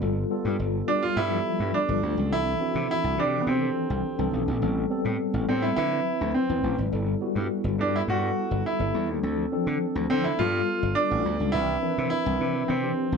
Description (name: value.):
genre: polished 1980s jazz-funk pop.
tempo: 104 BPM.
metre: 4/4.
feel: straight.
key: unclear.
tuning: A4 = 441 Hz.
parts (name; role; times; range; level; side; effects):
mellow tine electric piano; accompaniment; 0.0-13.2 s; E3 to B4; -28 LUFS; left 2 dB; medium stereo tremolo.
gritty slap bass; bass; 0.0-13.2 s; G1 to D3; -29 LUFS; equal; overdrive.
bright grand piano; melody; 0.9-13.2 s; B3 to F#4; -26 LUFS; right 2 dB; none.
room: wet small room reverb, RT60 0.5 s.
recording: band playing live in one room.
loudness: -23 LUFS.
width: side -5 dB against mid.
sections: 0.0-13.2 A section.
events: none.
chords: 0.0 G9; 2.3 C69; 4.6 Am9; 5.8 D13; 6.9 G69; 9.2 Dm7; 10.4 G9; 11.5 Cmaj9.